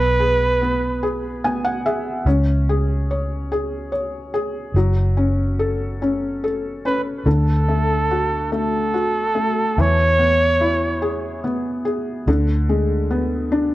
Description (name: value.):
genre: six-eight pop ballad.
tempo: 48 BPM (dotted quarters).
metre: 6/8.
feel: straight.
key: unclear.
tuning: A4 = 440 Hz.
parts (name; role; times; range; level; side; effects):
warm flugelhorn; melody; 0.0-1.4, 6.9-11.5 s; A4 to C#5; -20 LUFS; right 2 dB; plate reverb, tape echo.
felt-muted upright piano; accompaniment; 0.0-13.7 s; D3 to G#5; -22 LUFS; left 1 dB; plate reverb.
vintage muted fingered electric bass; bass; 0.0-13.7 s; F#1 to E2; -20 LUFS; equal; none.
room: moderate small room reverb, RT60 0.5 s.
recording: worn, warbling old tape, cassette tape, warbly pitch drift.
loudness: -18 LUFS.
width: side -16 dB against mid.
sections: 0.0-13.7 A section.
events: felt piano fill 1.0-2.3.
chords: 0.0 Eadd9/B; 2.3 C#5; 4.7 F#m; 7.3 D; 9.8 E; 12.3 G#dim/D.